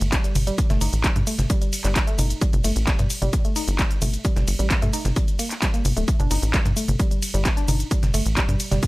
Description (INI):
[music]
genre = driving peak-time techno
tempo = 131 BPM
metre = 4/4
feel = straight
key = G minor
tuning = A4 = 438 Hz
[part]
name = tight sequencer bass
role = bass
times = 0.0-8.8 s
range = D1 to G2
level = -23 LUFS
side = equal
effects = sidechain pumping
[part]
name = techno drum kit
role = drums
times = 0.0-8.9 s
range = handclaps, hi-hat, ride cymbal, shaker, toms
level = -26 LUFS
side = equal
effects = overdrive, sidechain pumping on hats, studio reverb, sidechain pumping on perc, sidechain pumping on toms, sidechain pumping on cymbals
[part]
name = woody wave-folded pluck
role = riff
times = 0.1-8.8 s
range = G3 to Eb4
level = -30 LUFS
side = equal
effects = chorus, tube saturation, sidechain pumping, analog delay
[part]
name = breakbeat sampler-style drum kit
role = drums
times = 0.1-8.9 s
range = hi-hat, snare drum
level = -37 LUFS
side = equal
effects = none
[part]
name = electronic kick drum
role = drums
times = 0.1-8.9 s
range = none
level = -22 LUFS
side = equal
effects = overdrive, studio reverb
[sound]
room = little or no reverb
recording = dry, gritty hardware recording, transformer saturation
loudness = -19 LUFS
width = side -21 dB against mid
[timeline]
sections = 0.0-8.9 A section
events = none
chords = 0.0 G5